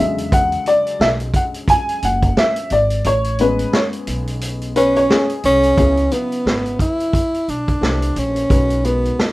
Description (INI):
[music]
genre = hip hop, jazz-hop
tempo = 88 BPM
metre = 4/4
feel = swing 59% on 16ths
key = A major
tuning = A4 = 440 Hz
[part]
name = dark upright piano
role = accompaniment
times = 0.0-9.3 s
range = C#3 to G#5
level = -19 LUFS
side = left 1 dB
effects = none
[part]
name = upright bass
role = bass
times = 0.0-9.1 s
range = F#1 to E2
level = -22 LUFS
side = equal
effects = none
[part]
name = vintage drum kit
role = drums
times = 0.2-9.3 s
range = hi-hat, kick drum, snare drum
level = -20 LUFS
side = equal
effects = none
[part]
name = mellow tenor saxophone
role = melody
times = 4.8-9.3 s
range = B3 to E4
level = -17 LUFS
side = equal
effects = none
[sound]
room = light reverb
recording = rough home demo mix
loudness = -15 LUFS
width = side -18 dB against mid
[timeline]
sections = 0.0-5.8 A section; 5.8-9.3 B section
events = upright piano solo 0.0-5.8; kick muted 3.0-5.8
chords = 0.0 E13; 3.0 Amaj7; 5.8 C#m7; 7.8 C9; 8.5 B69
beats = | 0.32 1.00 1.68 2.37 | 3.05 3.73 4.41 5.09 | 5.78 6.46 7.14 7.82 | 8.50 9.18